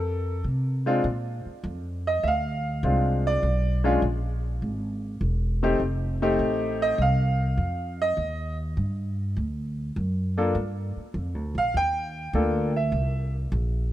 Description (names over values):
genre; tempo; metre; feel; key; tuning
jazz piano trio; 101 BPM; 4/4; swing 69% on 8ths; F mixolydian; A4 = 443 Hz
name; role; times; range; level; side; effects
clear concert grand piano; melody; 0.0-13.3 s; Ab3 to G5; -26 LUFS; equal; none
upright bass; bass; 0.0-13.9 s; E1 to C3; -26 LUFS; equal; none
room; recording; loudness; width
light reverb, studio reverb; rough home demo mix; -24 LUFS; side -13 dB against mid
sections
0.0-13.9 A section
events
grand piano solo 0.0-13.9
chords
0.0 F; 1.1 Bb7; 3.4 Bm6; 5.8 F7; 8.2 Eb; 9.4 D; 10.6 G7(no3); 12.9 C7